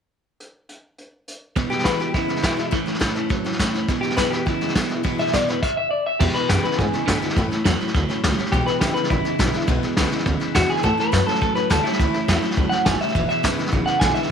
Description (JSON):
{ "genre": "rockabilly", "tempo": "207 BPM", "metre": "4/4", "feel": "straight", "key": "E mixolydian", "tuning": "A4 = 440 Hz", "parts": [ { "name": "vintage brush drum kit", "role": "drums", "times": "0.4-14.3 s", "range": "crash cymbal, hi-hat, kick drum, snare drum", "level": "-23 LUFS", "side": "equal", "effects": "none" }, { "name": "picked steel-string acoustic guitar", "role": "accompaniment", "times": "1.6-14.3 s", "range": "E2 to E4", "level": "-27 LUFS", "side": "left 11 dB", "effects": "none" }, { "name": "electric guitar at the edge of break-up", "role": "riff", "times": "1.6-14.3 s", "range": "E2 to G3", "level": "-26 LUFS", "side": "right 12 dB", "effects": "none" }, { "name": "electric guitar through a small old amp", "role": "melody", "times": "1.7-14.3 s", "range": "E4 to G#5", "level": "-23 LUFS", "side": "left 1 dB", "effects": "tape echo" }, { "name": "upright bass", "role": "bass", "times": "6.2-14.2 s", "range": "E1 to A2", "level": "-24 LUFS", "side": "equal", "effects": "none" } ], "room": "light reverb, small room ambience", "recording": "1960s-style stereo with parts hard left and right", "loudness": "-18 LUFS", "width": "side -7 dB against mid", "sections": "0.4-1.6 A section; 1.6-6.2 B section; 6.2-14.3 C section", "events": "none", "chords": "0.4 N.C.; 1.6 E; 2.7 A; 3.9 E; 7.4 A; 8.5 E; 10.8 A; 13.1 E" }